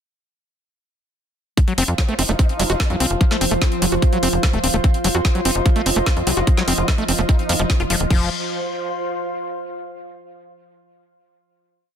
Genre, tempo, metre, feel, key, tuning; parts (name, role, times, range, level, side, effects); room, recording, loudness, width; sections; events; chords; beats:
psychedelic trance; 147 BPM; 4/4; straight; A4 = 440 Hz
evolving wavetable pad; sustained chords; 1.9-8.1 s; F3 to F4; -26 LUFS; equal; phaser, built-in reverb, sidechain pumping
overdriven acid bass; riff; 1.6-8.3 s; F3 to Gb4; -24 LUFS; moving between left 6 dB and right 5 dB; distortion, auto-pan, sidechain pumping, ping-pong delay
drum and bass drum kit; drums; 1.6-8.2 s; crash cymbal, hi-hat, snare drum; -24 LUFS; left 1 dB; overdrive
electronic kick drum; drums; 1.6-8.2 s; -17 LUFS; equal
warbly tape-like pad; texture; 2.1-9.7 s; F4 to C6; -27 LUFS; right 2 dB; chorus, built-in reverb, sidechain pumping
tight sequencer bass; bass; 1.8-8.3 s; Eb1 to F2; -22 LUFS; equal
vowel-sweep wobble bass; second line; 2.0-7.7 s; C4 to F4; -33 LUFS; left 4 dB; chorus, sidechain pumping, high-pass filter, ping-pong delay
light reverb; dense, heavily limited modern master; -16 LUFS; side -8 dB against mid
1.6-8.1 drop; 8.1-9.7 final chord
drop 1.6-8.1
1.6 F5
| 1.57 1.98 2.39 2.80 | 3.21 3.62 4.02 4.43 | 4.84 5.25 5.66 6.06 | 6.47 6.88 7.29 7.70 | 8.11 8.51 8.92 9.33